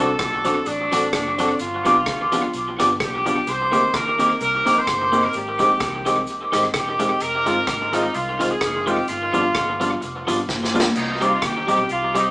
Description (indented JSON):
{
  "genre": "ska",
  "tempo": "128 BPM",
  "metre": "4/4",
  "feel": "swing 55% on 8ths",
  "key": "unclear",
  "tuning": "A4 = 438 Hz",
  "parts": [
    { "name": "clear horn section", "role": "melody", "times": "0.0-12.3 s", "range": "D4 to C5", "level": "-22 LUFS", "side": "equal", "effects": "none" },
    { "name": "clean electric guitar", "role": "accompaniment", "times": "0.0-12.3 s", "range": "Eb3 to G4", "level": "-22 LUFS", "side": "equal", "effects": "tape echo" },
    { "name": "warm upright piano", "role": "stabs", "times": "0.0-12.3 s", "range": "G3 to A4", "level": "-25 LUFS", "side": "equal", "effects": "none" },
    { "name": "vintage muted fingered electric bass", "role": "bass", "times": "0.0-12.3 s", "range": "E1 to Eb2", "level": "-35 LUFS", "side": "equal", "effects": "none" },
    { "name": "street-band drum kit", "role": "drums", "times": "0.2-12.3 s", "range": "crash cymbal, hi-hat, kick drum, rim click, snare drum", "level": "-27 LUFS", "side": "equal", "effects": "tape echo" },
    { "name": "cabasa", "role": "percussion", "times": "0.2-12.3 s", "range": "none", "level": "-46 LUFS", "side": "right 1 dB", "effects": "none" }
  ],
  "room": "wet studio reverb, RT60 0.7 s",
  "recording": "band playing live in one room, small speaker sound",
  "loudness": "-18 LUFS",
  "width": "side -24 dB against mid",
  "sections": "0.0-11.0 A section; 11.0-12.3 B section",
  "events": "drum fill 10.5-11.0",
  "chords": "0.0 D7; 1.6 G7; 3.5 Cm7; 5.3 Abmaj7; 7.2 Fm7; 9.1 G7; 11.0 Cm"
}